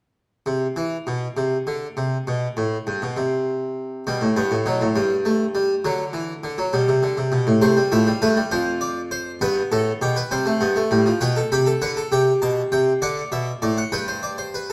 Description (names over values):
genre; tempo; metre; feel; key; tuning
classical, baroque-style 4-part fugue for harpsichord; 67 BPM (dotted quarters); 6/8; straight; unclear; A4 = 440 Hz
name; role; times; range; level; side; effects
harpsichord; solo; 0.5-14.7 s; F2 to B5; -22 LUFS; equal; none
room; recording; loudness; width
wet recital hall reverb, RT60 1.4 s; none; -22 LUFS; mono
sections
0.5-14.7 A section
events
none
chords
0.5 N.C.; 4.1 G; 5.0 Gsus2; 5.8 D; 6.7 G/B; 7.6 C; 8.5 Dm7/F; 9.4 G; 10.3 C5; 11.2 G/B; 12.1 Am7; 13.0 D; 13.9 G